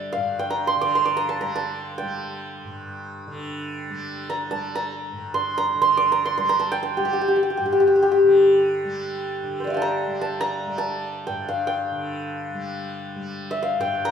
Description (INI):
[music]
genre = indian classical, Hindustani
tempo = free time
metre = none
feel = none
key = G raga bhimpalasi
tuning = A4 = 441 Hz
[part]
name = santur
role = melody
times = 0.0-14.1 s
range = G4 to D6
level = -21 LUFS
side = equal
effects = none
[part]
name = tanpura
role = drone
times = 0.0-14.1 s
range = G2 to G3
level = -33 LUFS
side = equal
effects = none
[sound]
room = wet recital hall reverb, RT60 1.4 s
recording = recorded in a church or concert hall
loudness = -20 LUFS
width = side -7 dB against mid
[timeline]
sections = 0.0-9.4 A section; 9.4-14.1 A section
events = none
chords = none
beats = free time